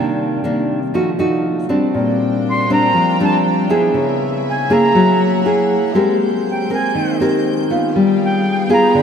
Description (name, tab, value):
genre	bossa nova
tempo	120 BPM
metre	4/4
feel	straight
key	unclear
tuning	A4 = 439 Hz
part	nylon-string guitar	accompaniment	0.0-9.0 s	Bb2 to Bb4	-14 LUFS	left 1 dB	none
part	rich studio string section	sustained chords	1.9-9.0 s	A#3 to G6	-26 LUFS	right 1 dB	none
part	jazz flute	melody	2.5-9.0 s	G5 to C6	-21 LUFS	right 1 dB	none
room	wet cathedral reverb, RT60 5.6 s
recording	in a vast, echoing space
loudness	-13 LUFS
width	side -7 dB against mid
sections	0.0-9.0 A section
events	flute solo 0.0-9.0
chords	0.0 Cm9; 0.9 F7b9; 1.9 Bb69; 3.9 C#m7; 4.9 F#9; 5.9 Abmaj9; 7.9 G7b9